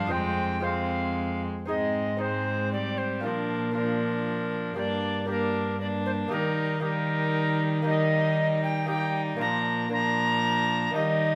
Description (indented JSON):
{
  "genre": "classical, renaissance-style consort dance",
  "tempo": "116 BPM",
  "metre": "3/4",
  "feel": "straight",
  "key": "unclear",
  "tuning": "A4 = 441 Hz",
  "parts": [
    { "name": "alto recorder", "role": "melody", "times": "0.0-11.4 s", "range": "Bb4 to Bb5", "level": "-31 LUFS", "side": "equal", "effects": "none" },
    { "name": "rich violin", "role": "second line", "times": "0.0-11.4 s", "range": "C4 to Eb4", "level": "-35 LUFS", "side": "equal", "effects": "none" },
    { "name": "lute", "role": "accompaniment", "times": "0.0-11.4 s", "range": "F2 to C5", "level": "-38 LUFS", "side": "equal", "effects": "none" },
    { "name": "rich viola", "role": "accompaniment", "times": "0.0-11.4 s", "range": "F3 to Bb3", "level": "-36 LUFS", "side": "equal", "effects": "none" },
    { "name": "dark cello", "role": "bass", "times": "0.0-11.4 s", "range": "F2 to Eb3", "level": "-33 LUFS", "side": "equal", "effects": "none" }
  ],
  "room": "moderate stone room reverb, RT60 1.5 s",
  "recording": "none",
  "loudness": "-27 LUFS",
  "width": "mono",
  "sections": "0.0-1.7 A section; 1.7-11.4 B section",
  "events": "none",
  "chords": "0.1 Fm; 1.7 Ab; 3.2 Bb; 4.8 Gm; 6.3 Eb; 9.4 Bb",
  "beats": "| 0.11 0.64 1.16 | 1.69 2.21 2.72 | 3.24 3.75 4.27 | 4.78 5.29 5.81 | 6.32 6.83 7.35 | 7.87 8.38 8.90 | 9.41 9.93 10.44 | 10.96"
}